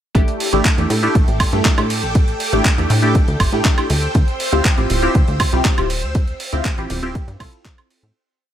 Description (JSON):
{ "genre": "filtered disco house", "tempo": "120 BPM", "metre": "4/4", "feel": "straight", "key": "D minor", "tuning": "A4 = 440 Hz", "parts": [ { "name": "funky polysynth comp", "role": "accompaniment", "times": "0.1-8.1 s", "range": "A3 to A4", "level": "-20 LUFS", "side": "equal", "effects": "chorus, phaser, sidechain pumping" }, { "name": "string machine, full ensemble", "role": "sustained chords", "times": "0.2-8.1 s", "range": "A4 to E6", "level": "-26 LUFS", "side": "equal", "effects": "ensemble chorus, sidechain pumping" }, { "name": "plucky analog bass", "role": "bass", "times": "0.2-8.1 s", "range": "D1 to A2", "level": "-20 LUFS", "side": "equal", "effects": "sidechain pumping" }, { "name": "dusty soul sampler-style drum kit", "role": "drums", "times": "0.2-8.1 s", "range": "handclaps, hi-hat, ride cymbal, woodblock", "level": "-22 LUFS", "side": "right 2 dB", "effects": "overdrive, sidechain pumping on hats, sidechain pumping on cymbals, sidechain pumping on perc" }, { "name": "electronic kick drum", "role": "drums", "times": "0.2-7.8 s", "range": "none", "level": "-16 LUFS", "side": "equal", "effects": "overdrive" } ], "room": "little or no reverb", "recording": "none", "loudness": "-14 LUFS", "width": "side -10 dB against mid", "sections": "0.2-8.2 drop", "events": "drop 0.2-8.2; fade-out 5.5-8.2", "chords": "0.2 A7sus4; 3.9 Dm11" }